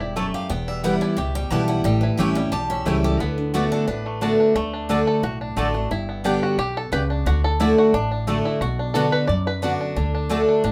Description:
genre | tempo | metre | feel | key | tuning
bluegrass | 178 BPM | 4/4 | straight | D major | A4 = 440 Hz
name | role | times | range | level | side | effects
bluegrass banjo | melody | 0.0-10.7 s | E3 to D5 | -30 LUFS | equal | none
picked steel-string acoustic guitar | melody | 0.0-4.4 s | D4 to A5 | -33 LUFS | equal | none
picked steel-string acoustic guitar | accompaniment | 0.0-10.7 s | E2 to G4 | -24 LUFS | equal | none
upright bass | bass | 0.0-10.7 s | E1 to F#2 | -28 LUFS | equal | none
mandolin | stabs | 0.2-10.4 s | A3 to A5 | -30 LUFS | equal | none
room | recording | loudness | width
moderate studio reverb, RT60 0.5 s | none | -22 LUFS | mono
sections
0.0-4.6 A section; 4.6-10.7 B section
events
five-string banjo solo 4.6-10.7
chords
0.0 A; 0.5 Em; 1.9 A7; 3.2 D6; 5.9 G; 7.3 D; 8.6 Bm; 10.0 D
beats
0.16 | 0.50 0.84 1.18 1.51 | 1.85 2.19 2.53 2.86 | 3.20 3.54 3.88 4.21 | 4.55 4.89 5.23 5.57 | 5.90 6.24 6.58 6.92 | 7.26 7.60 7.93 8.27 | 8.61 8.95 9.29 9.63 | 9.96 10.30 10.64

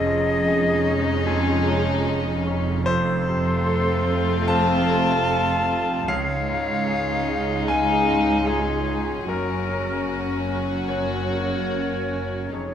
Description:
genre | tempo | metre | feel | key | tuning
cinematic, emotional film score for orchestra | 75 BPM | 4/4 | rubato | Db major | A4 = 440 Hz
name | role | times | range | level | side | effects
warm studio violin section | melody | 0.0-12.7 s | Eb4 to Gb4 | -31 LUFS | left 4 dB | none
clear clarinet | second line | 0.0-12.7 s | F4 to F5 | -29 LUFS | equal | none
silver concert flute | second line | 0.0-12.7 s | Ab4 to A5 | -26 LUFS | left 2 dB | none
warm symphonic violin section | second line | 0.0-12.7 s | C4 to Db4 | -32 LUFS | left 2 dB | none
bright concert grand piano | accompaniment | 0.0-12.7 s | Db2 to A5 | -28 LUFS | left 1 dB | none
dark symphonic viola section | accompaniment | 0.0-12.7 s | Gb3 to A3 | -32 LUFS | right 2 dB | none
dark French horn section | sustained chords | 0.0-12.7 s | Ab3 to Eb4 | -30 LUFS | left 3 dB | none
dark studio cello section | bass | 0.0-12.7 s | Db2 to Gb2 | -29 LUFS | right 4 dB | none
dark symphonic double bass section | bass | 0.0-12.7 s | F1 to Db2 | -29 LUFS | right 4 dB | none
room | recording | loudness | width
wet scoring stage reverb, RT60 1.7 s | none | -20 LUFS | side -9 dB against mid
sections
0.0-12.7 A section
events
none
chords
0.0 Dbadd9/F; 2.9 F; 6.1 Dbadd9; 9.3 Gb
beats
0.46 1.26 2.05 | 2.85 3.65 4.48 5.28 | 6.08 6.88 7.67 8.47 | 9.27 10.08 10.88 11.70 | 12.54

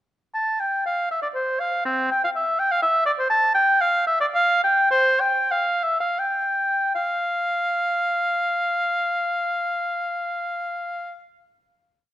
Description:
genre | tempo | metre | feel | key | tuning
classical, baroque-style fantasia for unaccompanied oboe | 76-127 BPM | 3/4 | rubato | F major | A4 = 441 Hz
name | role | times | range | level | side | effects
warm oboe | solo | 0.3-11.2 s | C4 to A5 | -20 LUFS | equal | none
room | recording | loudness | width
moderate recital hall reverb, RT60 1.4 s | none | -20 LUFS | side -13 dB against mid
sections
0.3-6.9 A section; 6.9-11.6 final note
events
slowing down 2.6-6.9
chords
none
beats
| 0.34 0.84 1.34 | 1.85 2.35 2.83 | 3.31 3.81 4.33 | 4.89 5.49 6.17 | 6.94 7.71 8.47 | 9.24 10.01 10.79

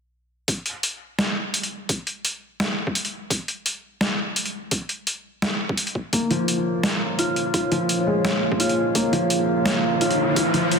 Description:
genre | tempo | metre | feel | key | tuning
half-time drum and bass | 170 BPM | 4/4 | swing 54% on 16ths, half-time | Bb minor | A4 = 436 Hz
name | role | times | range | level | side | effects
boom bap sampler-style drum kit | drums | 0.5-10.8 s | hi-hat, snare drum | -24 LUFS | equal | overdrive
electronic kick drum | drums | 0.5-10.4 s | none | -27 LUFS | equal | overdrive, high-pass filter on kick
dark analog pad | sustained chords | 6.6-10.8 s | Bb3 to F5 | -25 LUFS | equal | chorus, sidechain pumping
felt-muted upright piano | arpeggios | 6.1-10.8 s | F3 to F4 | -22 LUFS | equal | ping-pong delay
riser | sound effects | 9.5-10.8 s | none | -24 LUFS | equal | none
room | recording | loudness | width
moderate lush hall reverb, RT60 1.7 s, digital ambience | dense, heavily limited modern master, faint mains hum | -21 LUFS | side -5 dB against mid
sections
0.5-10.8 A section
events
riser 9.5-10.8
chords
0.5 Bbm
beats
| 0.48 0.83 1.19 1.54 | 1.89 2.25 2.60 2.95 | 3.31 3.66 4.01 4.37 | 4.72 5.07 5.42 5.78 | 6.13 6.48 6.83 7.19 | 7.54 7.89 8.25 8.60 | 8.95 9.31 9.66 10.01 | 10.37 10.72

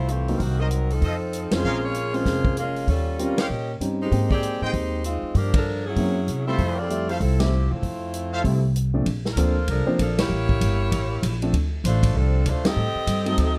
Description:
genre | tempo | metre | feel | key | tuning
jazz, big band swing | 194 BPM | 4/4 | swing 61% on 8ths | Bb major from 9.1 s | A4 = 439 Hz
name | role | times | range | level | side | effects
bright saxophone section | melody | 0.0-13.6 s | Eb3 to Eb5 | -30 LUFS | equal | plate reverb
upright bass | bass | 0.0-13.6 s | F1 to C3 | -26 LUFS | equal | none
vintage drum kit | drums | 0.1-13.5 s | hi-hat, kick drum, ride cymbal, snare drum | -29 LUFS | equal | none
warm concert grand piano | accompaniment | 0.3-13.6 s | Bb2 to G5 | -29 LUFS | equal | none
bright trumpet section | stabs | 0.6-8.4 s | F4 to G5 | -32 LUFS | equal | none
room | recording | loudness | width
light reverb | dark, warm production | -23 LUFS | mono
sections
0.0-9.1 A section; 9.1-13.6 B section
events
band accent 1.5, 3.3, 5.5, 7.4, 10.1, 12.6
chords
0.4 Cm7b5; 1.0 F7; 1.6 Bbm7; 2.9 Eb13; 4.1 Abmaj7; 5.4 Gm9; 6.0 Gb7#11; 6.6 Fmaj7; 9.1 Bbmaj7; 10.3 A7b9; 11.5 Dm7; 12.8 Am7b5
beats
0.09 | 0.40 0.71 1.02 1.33 | 1.64 1.95 2.26 2.57 | 2.88 3.19 3.50 3.81 | 4.12 4.43 4.74 5.05 | 5.36 5.67 5.98 6.29 | 6.60 6.91 7.21 7.52 | 7.83 8.14 8.45 8.76 | 9.07 9.38 9.69 9.99 | 10.30 10.61 10.92 11.23 | 11.54 11.84 12.15 12.46 | 12.77 13.08 13.38

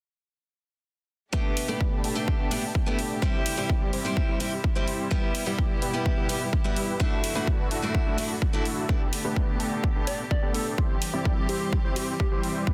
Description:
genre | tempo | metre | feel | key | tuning
EDM, festival progressive house | 127 BPM | 4/4 | straight | G major | A4 = 440 Hz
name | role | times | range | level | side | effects
picked steel-string acoustic guitar | accompaniment | 1.3-8.7 s | G3 to G4 | -35 LUFS | equal | sidechain pumping, digital delay
clear studio string section | sustained chords | 1.3-12.7 s | F#2 to G4 | -38 LUFS | equal | sidechain pumping
dense compressed supersaw | riff | 1.3-12.7 s | G3 to D5 | -34 LUFS | equal | sidechain pumping, low-pass filter, digital delay
electronic kick drum | drums | 1.3-12.7 s | none | -28 LUFS | equal | none
electronic hi-hat | drums | 1.6-12.5 s | none | -36 LUFS | equal | none
soft struck synth lead | melody | 10.1-12.4 s | G4 to D5 | -37 LUFS | equal | chorus, digital delay
riser | sound effects | 12.7 s | none | barely audible | none | none
room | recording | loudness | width
light reverb | dense, heavily limited modern master | -27 LUFS | mono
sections
1.3-12.7 A section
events
none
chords
1.3 Gadd9; 3.2 C; 5.1 Em; 7.0 Dadd9/F#; 8.9 Gadd9; 10.8 C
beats
| 1.33 1.80 2.28 2.75 | 3.22 3.69 4.17 4.64 | 5.11 5.58 6.06 6.53 | 7.00 7.47 7.95 8.42 | 8.89 9.36 9.84 10.31 | 10.78 11.25 11.73 12.20 | 12.67

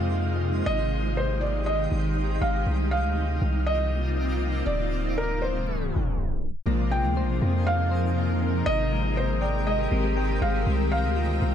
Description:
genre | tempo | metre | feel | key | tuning
hip hop | 120 BPM | 4/4 | half-time | unclear | A4 = 441 Hz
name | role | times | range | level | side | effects
felt-muted upright piano | melody | 0.0-11.5 s | Bb4 to G5 | -30 LUFS | right 1 dB | digital delay
granular cloud pad | sustained chords | 0.0-11.5 s | C3 to Bb4 | -29 LUFS | equal | built-in reverb
long sustained 808-style bass | bass | 0.0-11.5 s | D1 to F2 | -26 LUFS | equal | none
twinkling granular texture | texture | 0.0-11.5 s | Ab3 to D6 | -38 LUFS | left 1 dB | built-in reverb
soft electric-piano-like synth keys | arpeggios | 6.7-11.5 s | C3 to G5 | -33 LUFS | left 5 dB | chorus, tremolo, digital delay
room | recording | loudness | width
light reverb, digital ambience | tape stop | -23 LUFS | side -9 dB against mid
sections
0.0-6.7 A section; 6.7-11.5 B section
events
tape stop 5.7-6.7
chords
0.0 Bb9sus4; 0.7 Abmaj7; 2.7 Cm11; 4.7 Dm7b5; 6.7 Bb9sus4; 8.7 Abmaj7; 10.7 Cm11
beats
0.17 | 0.67 1.17 1.67 2.17 | 2.67 3.17 3.67 4.17 | 4.67 5.17 5.67 6.17 | 6.67 7.17 7.67 8.17 | 8.67 9.17 9.67 10.17 | 10.67 11.17

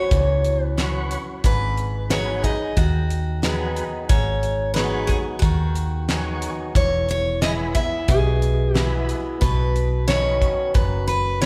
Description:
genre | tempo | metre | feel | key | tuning
honky-tonk and classic country | 90 BPM | 4/4 | straight | unclear | A4 = 441 Hz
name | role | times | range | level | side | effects
picked steel-string acoustic guitar | melody | 0.0-11.5 s | F#4 to E5 | -27 LUFS | equal | none
picked swing-style acoustic guitar | accompaniment | 0.0-11.5 s | E2 to G#4 | -31 LUFS | equal | none
hollow-body short-scale fingered electric bass | bass | 0.1-11.5 s | E1 to D#2 | -26 LUFS | equal | none
damped 70s drum kit | drums | 0.1-11.5 s | hi-hat, kick drum, snare drum | -25 LUFS | equal | none
tonewheel organ | accompaniment | 0.8-11.5 s | D#4 to C#5 | -37 LUFS | equal | fast rotary speaker
room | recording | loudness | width
moderate concert hall reverb, RT60 2.3 s | recorded in a church or concert hall | -21 LUFS | mono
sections
0.0-11.5 A section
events
none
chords
0.0 F#sus4; 1.4 G#m7; 6.8 E; 9.4 Badd9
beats
0.11 0.78 | 1.44 2.10 2.77 3.43 | 4.10 4.76 5.43 6.09 | 6.76 7.42 8.09 8.75 | 9.42 10.08 10.75 11.42

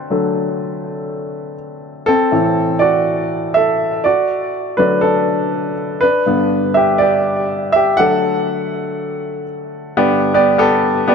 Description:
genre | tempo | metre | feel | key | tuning
pop | 122 BPM | 4/4 | straight | G major | A4 = 441 Hz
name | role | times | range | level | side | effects
clear baby grand piano | solo | 0.0-11.1 s | G2 to F#5 | -14 LUFS | equal | tape echo
room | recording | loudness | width
moderate plate reverb, RT60 3.9 s | none | -14 LUFS | side -6 dB against mid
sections
0.0-2.1 A section; 2.1-10.0 B section; 10.0-11.1 C section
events
grand piano solo 0.0-2.1, 2.1-10.0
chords
0.0 D; 2.1 Am; 4.0 D; 6.0 G; 8.0 D; 10.0 G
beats
| 0.10 0.59 1.09 1.58 | 2.08 2.57 3.06 3.56 | 4.05 4.54 5.04 5.53 | 6.03 6.52 7.01 7.50 | 8.00 8.49 8.98 9.48 | 9.97 10.46 10.96

